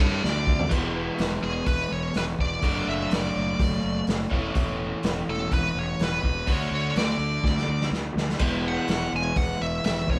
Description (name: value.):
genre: blues rock power trio and southern rock.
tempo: 125 BPM.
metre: 4/4.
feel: straight.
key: E mixolydian.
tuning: A4 = 440 Hz.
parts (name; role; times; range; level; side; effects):
bluesy overdriven lead guitar; melody; 0.0-10.2 s; G#4 to G#5; -32 LUFS; equal; distortion.
fuzz fingered electric bass; bass; 0.0-10.2 s; E1 to G2; -33 LUFS; equal; overdrive.
vintage drum kit; drums; 0.2-10.2 s; crash cymbal, hi-hat, kick drum, snare drum, toms; -29 LUFS; equal; none.
overdriven semi-hollow guitar; riff; 0.7-10.2 s; D3 to F#4; -31 LUFS; equal; spring reverb.
room: moderate stone room reverb, RT60 1.1 s.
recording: band playing live in one room.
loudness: -26 LUFS.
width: mono.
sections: 0.7-10.2 A section.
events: drum fill 0.2-0.7, 7.4-8.4.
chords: 0.2 N.C.; 0.7 E; 2.6 D/F#; 4.3 A/E; 6.5 D; 8.4 E.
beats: 0.23 | 0.71 1.19 1.67 2.15 | 2.63 3.12 3.60 4.08 | 4.56 5.04 5.52 6.00 | 6.48 6.96 7.45 7.93 | 8.41 8.89 9.37 9.85.